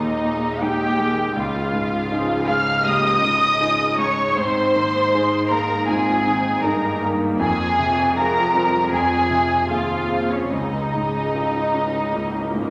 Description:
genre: cinematic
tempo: 79 BPM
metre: 4/4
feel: uneven beats, rubato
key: unclear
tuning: A4 = 440 Hz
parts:
  - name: muted symphonic violin section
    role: melody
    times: 0.0-12.7 s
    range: Db5 to F6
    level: -25 LUFS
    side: equal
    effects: none
  - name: muted symphonic violin section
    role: second line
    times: 0.0-12.7 s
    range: Db4 to F5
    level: -26 LUFS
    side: equal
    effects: none
  - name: clear grand piano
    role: accompaniment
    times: 0.0-12.7 s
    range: Db2 to Ab4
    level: -28 LUFS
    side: equal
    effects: none
  - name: muted symphonic viola section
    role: accompaniment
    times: 0.0-12.7 s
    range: F3 to Ab4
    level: -30 LUFS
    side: equal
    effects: none
  - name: muted symphonic cello section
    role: bass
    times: 0.0-12.7 s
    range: Db2 to Ab2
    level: -30 LUFS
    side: equal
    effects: none
room: wet recital hall reverb, RT60 1.5 s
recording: none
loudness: -20 LUFS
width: mono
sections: 0.0-12.7 A section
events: none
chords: 0.0 Ebsus4; 1.4 Dbadd9; 4.4 Absus2; 7.4 Fm; 10.5 Dbadd9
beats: 0.62 | 1.36 2.10 2.85 3.61 | 4.36 5.12 5.87 6.64 | 7.41 8.16 8.92 9.70 | 10.52 11.34 12.14

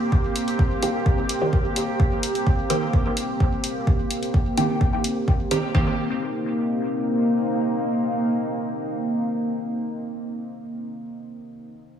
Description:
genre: dub techno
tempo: 128 BPM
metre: 4/4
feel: straight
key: C minor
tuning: A4 = 441 Hz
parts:
  - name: deep dark ambient pad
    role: sustained chords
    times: 0.0-10.3 s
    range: Bb3 to G4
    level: -24 LUFS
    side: equal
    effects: chorus, built-in reverb, sidechain pumping
  - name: electronic kick drum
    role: drums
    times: 0.1-5.8 s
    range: none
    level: -21 LUFS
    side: equal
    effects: overdrive
  - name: electronic hi-hat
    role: drums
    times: 0.4-5.6 s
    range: none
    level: -31 LUFS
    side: left 2 dB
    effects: overdrive
  - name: filtered dub chord stab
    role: stabs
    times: 0.8-10.4 s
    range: Eb3 to G4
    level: -26 LUFS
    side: right 1 dB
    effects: phaser, sidechain pumping, dub echo
room: wet lush hall reverb, RT60 1.9 s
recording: dreamy mix soaked in reverb, small room ambience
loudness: -21 LUFS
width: side -8 dB against mid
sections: 0.0-5.7 A section; 5.7-9.5 B section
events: filter sweep on synth stab 0.0-5.7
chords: 0.0 C7(no3); 5.7 Cm7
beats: | 0.12 0.59 1.06 1.53 | 2.00 2.46 2.93 3.40 | 3.87 4.34 4.81 5.28 | 5.75 6.21 6.68 7.15 | 7.62 8.09 8.56 9.03

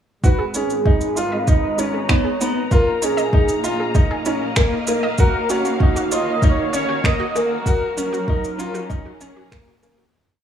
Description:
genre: piano and strings electronica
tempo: 97 BPM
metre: 4/4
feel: straight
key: unclear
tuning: A4 = 441 Hz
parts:
  - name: warm velvety synth lead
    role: melody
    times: 0.2-9.8 s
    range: Gb4 to F5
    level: -23 LUFS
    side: right 1 dB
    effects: chorus, tape echo
  - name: muted studio string section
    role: sustained chords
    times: 0.2-10.1 s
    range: Eb3 to Bb5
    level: -28 LUFS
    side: left 1 dB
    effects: sidechain pumping, low-pass filter
  - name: analog pluck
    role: arpeggios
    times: 0.2-10.0 s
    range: Db4 to Eb5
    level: -30 LUFS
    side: right 4 dB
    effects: chorus, cassette tape, sidechain pumping, tape echo
  - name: bright upright piano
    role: riff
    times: 0.2-10.0 s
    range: Bb3 to Gb4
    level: -24 LUFS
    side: left 1 dB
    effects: tape echo
  - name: dark studio double bass section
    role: bass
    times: 0.2-10.1 s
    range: Ab1 to Gb2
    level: -33 LUFS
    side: equal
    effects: sidechain pumping, high-pass filter
  - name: electronic kick drum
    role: drums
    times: 0.2-9.6 s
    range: none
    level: -16 LUFS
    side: equal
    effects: overdrive, small room ambience
  - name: electronic shaker and finger snaps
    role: drums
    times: 0.2-10.0 s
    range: none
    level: -27 LUFS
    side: right 1 dB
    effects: small room ambience
room: light reverb, small room ambience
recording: none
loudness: -17 LUFS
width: side -9 dB against mid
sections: 0.2-10.1 build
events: build-up 0.2-10.1; fade-out 6.8-10.1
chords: 0.2 Abm; 2.7 Bb7sus4; 5.2 Ebm7; 7.7 Gbmaj7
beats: | 0.24 0.86 1.48 2.10 | 2.72 3.34 3.96 4.57 | 5.19 5.81 6.43 7.05 | 7.67 8.29 8.90 9.52

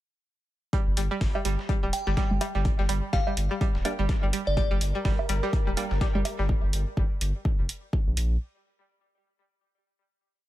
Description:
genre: minimal techno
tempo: 125 BPM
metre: 4/4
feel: swing 58% on 16ths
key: G minor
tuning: A4 = 440 Hz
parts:
  - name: string-like resonator pluck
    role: riff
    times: 0.7-6.4 s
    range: G3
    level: -32 LUFS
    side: right 1 dB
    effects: chorus, sidechain pumping, tape echo
  - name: dusty soul sampler-style drum kit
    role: drums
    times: 0.7-6.5 s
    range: hi-hat, snare drum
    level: -42 LUFS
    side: left 1 dB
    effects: overdrive, sidechain pumping on hats, high-pass filter on hats, high-pass filter on snare, high-pass filter on room
  - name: electronic kick drum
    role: drums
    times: 0.7-8.0 s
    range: none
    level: -26 LUFS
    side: equal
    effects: none
  - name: round analog bass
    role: bass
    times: 0.9-8.4 s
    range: D1 to Bb1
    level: -27 LUFS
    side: equal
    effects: tube saturation, sidechain pumping
  - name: electronic hi-hat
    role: drums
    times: 1.0-8.3 s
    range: none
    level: -33 LUFS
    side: right 2 dB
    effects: none
  - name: woodblock and congas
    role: percussion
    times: 1.4-6.4 s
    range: none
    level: -33 LUFS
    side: right 4 dB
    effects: digital delay
  - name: glassy synth bell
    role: melody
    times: 1.9-4.7 s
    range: D5 to G5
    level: -33 LUFS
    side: left 1 dB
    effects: chorus, digital delay
  - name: wavetable chord stab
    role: stabs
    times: 3.9-5.8 s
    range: Bb3 to G4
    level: -37 LUFS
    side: right 2 dB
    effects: digital delay
  - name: bubbling stepped-filter texture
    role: texture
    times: 4.9-6.5 s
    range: Bb4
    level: -39 LUFS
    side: equal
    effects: chorus, built-in reverb, sidechain pumping
room: little or no reverb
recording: none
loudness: -24 LUFS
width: side -15 dB against mid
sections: 0.7-8.4 groove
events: none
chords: 0.7 Gm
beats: | 0.73 1.21 1.69 2.17 | 2.65 3.13 3.61 4.09 | 4.57 5.05 5.53 6.01 | 6.49 6.97 7.45 7.93

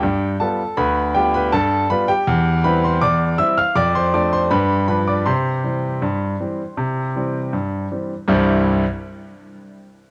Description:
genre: ragtime piano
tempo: 80 BPM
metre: 2/4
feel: straight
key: C major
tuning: A4 = 439 Hz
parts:
  - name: clear concert grand piano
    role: solo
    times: 0.0-8.8 s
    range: C2 to F6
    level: -19 LUFS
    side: equal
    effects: cassette tape
room: light reverb, small room ambience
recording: home recording on cassette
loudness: -19 LUFS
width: mono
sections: 0.0-8.3 A section; 8.3-9.8 B section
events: none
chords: 0.0 G7; 2.3 C/E; 3.8 Dm/F; 4.5 G7; 5.3 C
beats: 0.03 | 0.78 1.52 | 2.27 3.01 | 3.76 4.51 | 5.26 6.02 | 6.78 7.53 | 8.29

